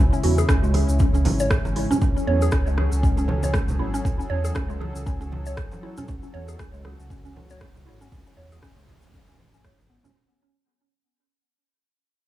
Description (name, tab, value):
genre	afro house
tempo	118 BPM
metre	4/4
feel	swing 57% on 16ths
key	unclear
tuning	A4 = 439 Hz
part	warm analog pad	sustained chords	0.0-10.1 s	C#3 to A4	-32 LUFS	left 1 dB	chorus, sidechain pumping
part	mallet-like synth pluck	arpeggios	0.0-10.1 s	G#3 to C#5	-28 LUFS	right 1 dB	chorus, phaser, cassette tape, sidechain pumping, tape echo
part	dark detuned saw bass	bass	0.0-10.0 s	G#1 to E2	-24 LUFS	equal	tube saturation, sidechain pumping
part	egg shaker	percussion	0.1-10.1 s	none	-41 LUFS	left 3 dB	none
part	afro-pop drum kit	drums	0.2-9.8 s	hi-hat, rim click	-31 LUFS	equal	studio ambience, dub echo
part	congas	percussion	0.2-10.1 s	none	-31 LUFS	right 2 dB	none
part	electronic kick drum	drums	0.5-9.8 s	none	-22 LUFS	equal	studio ambience
room	little or no reverb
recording	echo-heavy mix, small room ambience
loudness	-20 LUFS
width	side -14 dB against mid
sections	0.0-10.2 A section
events	fade-out 0.0-10.2; filter sweep on synth pluck 0.0-10.2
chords	0.0 C#m; 2.0 F#madd9